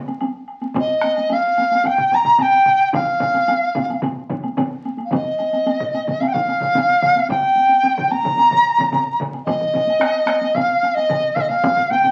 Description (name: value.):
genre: japanese traditional, taiko drum ensemble.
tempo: 110 BPM.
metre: 4/4.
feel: straight.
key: unclear.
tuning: A4 = 440 Hz.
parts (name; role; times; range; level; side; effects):
taiko ensemble; percussion; 0.1-12.1 s; none; -28 LUFS; equal; none.
woodblock; percussion; 0.1-12.1 s; none; -34 LUFS; equal; none.
solo taiko drums; percussion; 0.7-12.1 s; none; -33 LUFS; equal; none.
mellow hollow dizi; melody; 0.8-12.1 s; Eb5 to Bb5; -18 LUFS; equal; none.
solo taiko drums; percussion; 0.8-11.8 s; none; -30 LUFS; equal; none.
taiko ensemble; percussion; 2.9-12.1 s; none; -32 LUFS; equal; none.
room: wet club reverb, RT60 0.6 s.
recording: very old 78 rpm record, vinyl crackle.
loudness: -18 LUFS.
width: mono.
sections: 0.0-5.1 A section; 5.1-12.1 B section.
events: none.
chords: none.